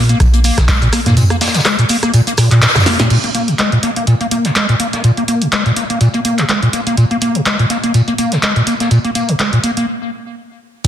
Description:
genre	acid house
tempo	124 BPM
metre	4/4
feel	swing 56% on 16ths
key	unclear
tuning	A4 = 441 Hz
part	overdriven acid bass	riff	0.0-10.9 s	Bb2 to Bb3	-13 LUFS	equal	analog chorus, vintage 12-bit sampler grit, sidechain pumping, ping-pong delay
part	round analog bass	bass	0.0-1.2 s	Bb1 to Bb2	-14 LUFS	equal	sidechain pumping
part	punchy analog drum machine	drums	0.1-10.9 s	crash cymbal, handclaps, hi-hat, rim click, shaker, snare drum, toms	-16 LUFS	equal	studio reverb
part	electronic kick drum	drums	0.2-0.8, 10.8-10.9 s	none	-13 LUFS	equal	studio reverb
part	modern studio drum kit	drums	0.2-10.9 s	hi-hat, snare drum, tambourine	-26 LUFS	left 2 dB	sidechain pumping on hats, high-pass filter on hats, low-pass filter on hats, studio reverb, high-pass filter on snare, low-pass filter on snare, sidechain pumping on perc, high-pass filter on perc, low-pass filter on perc, high-pass filter on room, low-pass filter on room
room	moderate lush hall reverb, RT60 1.6 s, studio ambience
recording	dense, heavily limited modern master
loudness	-11 LUFS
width	side -10 dB against mid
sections	0.0-3.1 A section; 3.1-10.8 B section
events	drop 0.0-3.1; band accent 2.6; drum fill 2.9; break 9.9-10.8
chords	none

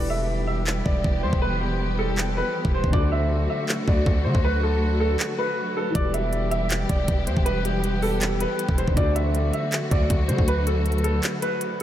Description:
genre	hip hop, trap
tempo	159 BPM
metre	4/4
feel	half-time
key	E minor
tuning	A4 = 440 Hz
part	clear baby grand piano	melody	0.0-11.8 s	G4 to E5	-27 LUFS	right 1 dB	wide subtle chorus, low-pass filter, analog delay
part	felt-muted upright piano	accompaniment	0.0-11.8 s	D3 to B4	-33 LUFS	left 2 dB	low-pass filter
part	warm symphonic string section	sustained chords	0.0-11.8 s	D3 to G4	-29 LUFS	equal	none
part	distorted 808-style bass	bass	0.0-11.2 s	E1 to D3	-25 LUFS	equal	distortion
part	trap drum kit	drums	0.7-11.8 s	handclaps, hi-hat, kick drum	-26 LUFS	equal	none
room	moderate cathedral reverb, RT60 6.6 s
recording	dreamy mix soaked in reverb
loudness	-21 LUFS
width	side -11 dB against mid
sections	0.0-11.8 A section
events	break 0.0-6.0, 11.2-11.8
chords	0.0 Em; 2.9 D; 6.0 Em; 9.0 D

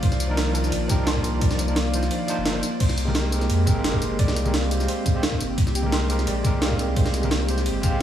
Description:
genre	liquid drum and bass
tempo	173 BPM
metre	4/4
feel	straight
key	unclear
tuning	A4 = 440 Hz
part	airy breathy pad	sustained chords	0.0-8.0 s	Eb3 to D5	-29 LUFS	equal	chorus, sidechain pumping
part	concert harp	arpeggios	0.0-8.0 s	G4 to C6	-34 LUFS	equal	dub echo
part	saturated sub bass	bass	0.0-8.0 s	G1 to F2	-25 LUFS	equal	none
part	breakbeat sampler-style drum kit	drums	0.0-7.9 s	crash cymbal, hi-hat, ride cymbal, snare drum, tambourine	-27 LUFS	right 1 dB	none
part	electronic kick drum	drums	0.0-7.9 s	none	-22 LUFS	equal	none
part	overdriven tine electric piano	accompaniment	0.3-8.0 s	F3 to C5	-29 LUFS	right 1 dB	fast tremolo, tape echo
part	congas	percussion	3.1-7.9 s	none	-32 LUFS	right 1 dB	none
room	light reverb, digital ambience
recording	studio ambience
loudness	-20 LUFS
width	side -10 dB against mid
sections	0.0-8.0 A section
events	break 2.1-2.8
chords	0.0 Cm11; 2.8 Abmaj9

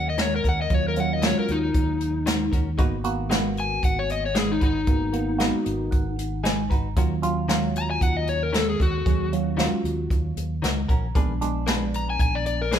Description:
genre	straight-eighth soul blues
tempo	115 BPM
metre	4/4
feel	swing 54% on 16ths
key	Eb minor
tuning	A4 = 441 Hz
part	overdriven semi-hollow guitar	melody	0.0-12.8 s	Eb4 to Bb5	-26 LUFS	left 4 dB	spring reverb
part	reed electric piano	accompaniment	0.0-12.6 s	Gb3 to Bb5	-29 LUFS	right 5 dB	phaser
part	fingered electric bass	bass	0.0-12.8 s	Ab1 to Eb2	-28 LUFS	equal	none
part	direct-recorded clean electric guitar	stabs	0.2-12.8 s	Eb3 to Cb5	-32 LUFS	left 4 dB	tremolo
part	jazz brush drum kit	drums	0.2-12.8 s	hi-hat, kick drum, snare drum	-24 LUFS	equal	none
room	light reverb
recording	band playing live in one room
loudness	-21 LUFS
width	side -9 dB against mid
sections	0.0-12.8 A section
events	reed electric piano fill 5.4-7.0, 10.4-11.2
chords	0.0 Ebm7; 2.8 Abm7; 7.0 Ebm7; 11.2 Bb7b9

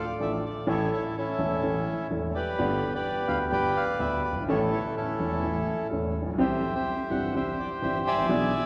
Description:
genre	tango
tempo	126 BPM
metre	4/4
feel	rubato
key	unclear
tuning	A4 = 440 Hz
part	bandoneon	melody	0.0-8.7 s	C#4 to G#5	-31 LUFS	equal	none
part	warm concert grand piano	accompaniment	0.2-8.5 s	E1 to A4	-30 LUFS	equal	none
room	wet cathedral reverb, RT60 4.3 s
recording	recorded in a church or concert hall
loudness	-28 LUFS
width	mono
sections	0.0-8.7 A section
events	none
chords	0.0 Dm; 0.7 A; 2.6 G; 4.5 A; 6.4 C

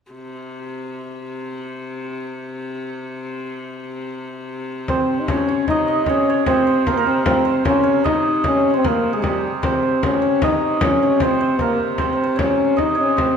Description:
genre	medieval dance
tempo	152 BPM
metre	3/4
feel	straight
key	C phrygian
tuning	A4 = 440 Hz
part	clear hurdy-gurdy	drone	0.1-13.4 s	C3	-28 LUFS	left 3 dB	none
part	mellow trombone	melody	4.9-13.4 s	G3 to Eb4	-18 LUFS	left 1 dB	none
part	hammered dulcimer	second line	4.9-13.4 s	G4 to Eb5	-22 LUFS	right 5 dB	none
part	frame drum	percussion	4.9-13.4 s	none	-24 LUFS	left 2 dB	none
room	wet recital hall reverb, RT60 1.4 s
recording	minimal, uncompressed stereo recording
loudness	-16 LUFS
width	side -7 dB against mid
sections	0.1-4.9 A section; 4.9-13.4 B section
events	none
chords	none

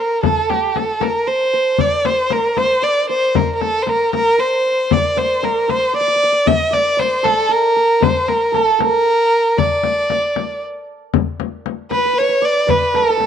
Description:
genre	Persian modal ensemble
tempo	77 BPM (dotted quarters)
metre	6/8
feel	straight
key	unclear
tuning	A4 = 439 Hz
part	warm violin	melody	0.0-13.3 s	G4 to E5-49c	-15 LUFS	equal	none
part	santur	second line	0.0-13.3 s	A4 to Eb5+45c	-23 LUFS	right 9 dB	none
part	frame drum	percussion	0.2-13.3 s	none	-20 LUFS	left 10 dB	none
room	wet spring reverb, RT60 1.2 s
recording	1960s-style stereo with parts hard left and right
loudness	-14 LUFS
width	side -8 dB against mid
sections	0.0-11.1 A section; 11.1-13.3 B section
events	none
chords	none

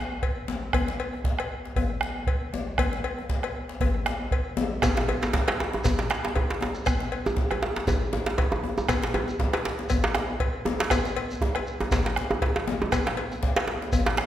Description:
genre	west african traditional, West African drum ensemble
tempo	118 BPM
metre	4/4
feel	swing 56% on 16ths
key	none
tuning	none
part	bombo	percussion	0.2-14.3 s	none	-28 LUFS	right 1 dB	none
part	cowbell	percussion	0.2-14.1 s	none	-33 LUFS	left 5 dB	none
part	djembe	percussion	0.5-14.3 s	none	-31 LUFS	left 3 dB	none
part	djembe	percussion	4.8-14.3 s	none	-28 LUFS	right 2 dB	none
part	shekere	percussion	4.8-14.1 s	none	-36 LUFS	right 1 dB	none
room	wet recital hall reverb, RT60 1.6 s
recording	none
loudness	-24 LUFS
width	side -12 dB against mid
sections	0.0-4.8 A section; 4.8-14.3 B section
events	none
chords	none

